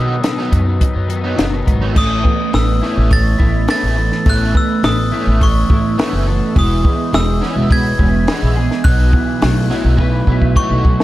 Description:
indie rock; 104 BPM; 4/4; straight; A4 = 440 Hz
glockenspiel with brass mallets; melody; 0.0-11.0 s; C#6 to A6; -22 LUFS; left 1 dB
electric guitar at the edge of break-up; riff; 0.0-11.0 s; B2 to C#5; -22 LUFS; left 4 dB; analog chorus
fuzz guitar; riff; 0.0-11.0 s; E3 to E4; -21 LUFS; right 6 dB; distortion, analog chorus
upright bass; bass; 0.0-11.0 s; E1 to B2; -16 LUFS; equal
compact cocktail drum kit; drums; 0.2-11.0 s; crash cymbal, hi-hat, kick drum, snare drum; -16 LUFS; equal
small room ambience; dark, warm production; -12 LUFS; side -16 dB against mid
0.0-2.0 A section; 2.0-11.0 B section
drum fill 10.0-11.0
0.0 B; 2.0 Aadd9; 6.6 E6; 8.8 B7sus4

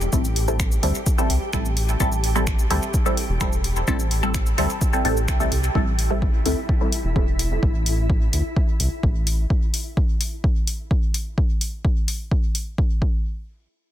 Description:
dub techno; 128 BPM; 4/4; straight; A minor; A4 = 440 Hz
round analog bass; bass; 0.0-9.5 s; E1 to D2; -24 LUFS; equal; sidechain pumping
deep house drum kit; drums; 0.0-12.6 s; cabasa, finger snaps, hi-hat; -29 LUFS; left 1 dB; soft clipping on snare, dub echo
flickering grainy texture; texture; 0.0-9.5 s; E4 to G4; -34 LUFS; left 1 dB; built-in reverb, sidechain pumping
filtered dub chord stab; stabs; 0.1-7.3 s; G3 to A4; -25 LUFS; equal; phaser, sidechain pumping, dub echo
electronic kick drum; drums; 0.1-13.1 s; -22 LUFS; equal
digital ambience; dense, heavily limited modern master; -19 LUFS; side -12 dB against mid
0.0-5.8 A section; 5.8-13.3 B section
filter sweep on synth stab 5.8-7.6
0.0 Am7; 13.0 N.C.

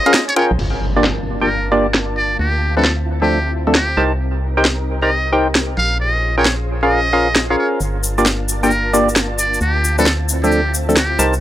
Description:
UK garage, two-step garage; 133 BPM; 4/4; swing 66% on 16ths; G minor; A4 = 444 Hz
trumpet with metal mute; melody; 0.0-11.2 s; G4 to F5; -20 LUFS; equal; analog delay
soft string machine; sustained chords; 0.0-11.4 s; Bb3 to A5; -27 LUFS; left 1 dB; ensemble chorus
percussive organ stab; stabs; 0.1-11.3 s; F3 to Bb5; -17 LUFS; equal; chorus, analog delay
garage drum kit; drums; 0.1-11.1 s; crash cymbal, hi-hat, snare drum; -16 LUFS; equal; overdrive, low-pass filter on snare, small room ambience, low-pass filter on hats, low-pass filter on cymbals
organ-like FM bass; bass; 0.5-11.4 s; G1 to D2; -20 LUFS; equal
impact; sound effects; 0.6-2.4 s; -26 LUFS; equal
cabasa; percussion; 7.8-11.4 s; -23 LUFS; left 3 dB
light reverb; dry, gritty hardware recording, transformer saturation; -14 LUFS; side -13 dB against mid
0.6-11.4 A section
band accent 0.1; impact 0.6-2.4
0.0 Bbm7; 0.6 Gm7; 2.4 Dm7; 4.0 Cm7; 5.8 Bbm7; 7.8 Gm7; 9.6 Dm7

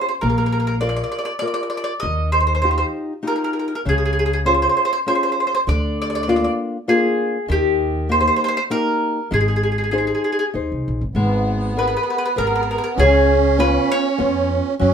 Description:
italian folk, Italian serenade; 99 BPM; 3/4; straight; Ab major, G# minor from 11.2 s; A4 = 440 Hz
mandolin; melody; 0.0-14.5 s; G4 to Eb5; -20 LUFS; right 1 dB
nylon-string guitar; accompaniment; 0.0-14.9 s; Db3 to D5; -22 LUFS; left 3 dB
upright bass; bass; 0.2-14.9 s; Ab1 to F#2; -21 LUFS; equal
musette accordion; second line; 11.1-14.9 s; B3 to C#4; -21 LUFS; right 6 dB
moderate studio reverb, RT60 0.6 s; minimal, uncompressed stereo recording; -17 LUFS; side -7 dB against mid
0.0-11.2 A section; 11.2-14.9 B section
0.2 Bb; 2.0 Ebadd9; 3.8 Db; 5.7 Bb/D; 7.5 Eb; 9.3 Ab; 11.2 G#madd9; 13.0 C#7

